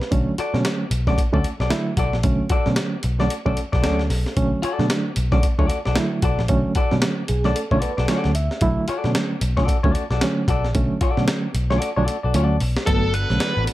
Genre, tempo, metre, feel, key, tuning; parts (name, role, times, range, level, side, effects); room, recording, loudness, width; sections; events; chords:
funk; 113 BPM; 4/4; swing 60% on 16ths; B minor; A4 = 439 Hz
reed electric piano; stabs; 0.0-13.7 s; D3 to E5; -23 LUFS; right 2 dB; fast tremolo
breakbeat sampler-style drum kit; drums; 0.0-13.7 s; hi-hat, kick drum, snare drum; -24 LUFS; equal
vintage muted picked electric bass; bass; 0.1-13.7 s; G1 to B2; -22 LUFS; equal
clean electric guitar; accompaniment; 0.4-12.6 s; F#4 to D5; -26 LUFS; left 3 dB
nasal lead guitar with a parked wah; melody; 12.9-13.6 s; A4 to B4; -23 LUFS; left 2 dB; overdrive, analog delay
tonewheel organ; sustained chords; 12.9-13.7 s; B3 to A4; -33 LUFS; right 1 dB; chorus vibrato, slow rotary speaker
light reverb; -18 LUFS; side -16 dB against mid
0.0-12.9 A section
reed electric piano fill 3.6-4.4, 7.0-8.6; drum fill 11.8-12.9
0.0 Bm7; 12.9 Gmaj9